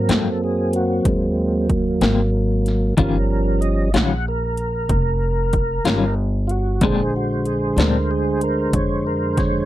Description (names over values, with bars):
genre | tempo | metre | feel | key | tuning
slow blues | 62 BPM (dotted quarters) | 12/8 | straight | unclear | A4 = 438 Hz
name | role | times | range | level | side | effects
mellow tonewheel organ | sustained chords | 0.0-9.7 s | D3 to Gb5 | -20 LUFS | right 1 dB | slow rotary speaker, overdrive, chorus vibrato
upright bass | bass | 0.0-9.7 s | F1 to Gb2 | -22 LUFS | equal | none
electric guitar at the edge of break-up | accompaniment | 0.1-8.0 s | Ab2 to F4 | -19 LUFS | left 5 dB | tremolo
80s electronic pad drums | drums | 0.1-9.5 s | hi-hat, kick drum, snare drum | -22 LUFS | equal | overdrive
room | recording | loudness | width
little or no reverb | dry, close 1970s-style studio recording | -17 LUFS | side -14 dB against mid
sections
0.0-9.7 A section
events
tonewheel organ solo 0.0-9.7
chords
0.0 Ab9; 3.0 Eb9; 6.8 Bb9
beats
0.10 1.06 2.02 | 2.98 3.94 4.90 5.86 | 6.82 7.78 8.74